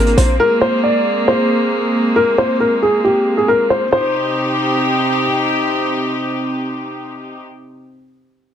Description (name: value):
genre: hip hop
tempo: 136 BPM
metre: 4/4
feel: half-time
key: C minor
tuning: A4 = 440 Hz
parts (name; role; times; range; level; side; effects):
- dark baby grand piano; melody; 0.0-5.2 s; G4 to D5; -15 LUFS; left 1 dB; low-pass filter
- warm studio string section; sustained chords; 0.0-7.4 s; C3 to G4; -17 LUFS; right 1 dB; none
room: light reverb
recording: dense, heavily limited modern master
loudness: -13 LUFS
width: side -9 dB against mid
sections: 0.0-3.9 A section; 3.9-7.5 B section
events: none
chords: 0.4 Abadd9; 3.9 Cm